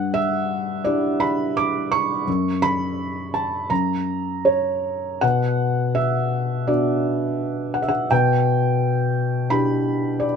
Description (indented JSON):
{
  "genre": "classical, lyrical solo piano",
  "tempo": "84 BPM",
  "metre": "4/4",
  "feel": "rubato",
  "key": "unclear",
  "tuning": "A4 = 439 Hz",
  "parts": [
    { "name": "felt-muted upright piano", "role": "solo", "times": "0.0-10.4 s", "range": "F#2 to D6", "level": "-19 LUFS", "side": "equal", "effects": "none" }
  ],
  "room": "light reverb",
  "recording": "minimal, uncompressed stereo recording",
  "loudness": "-19 LUFS",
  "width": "side -6 dB against mid",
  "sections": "0.0-10.4 A section",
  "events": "none",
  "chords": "0.0 Em7/G; 2.3 N.C.; 5.2 Bm; 8.1 Em7/B"
}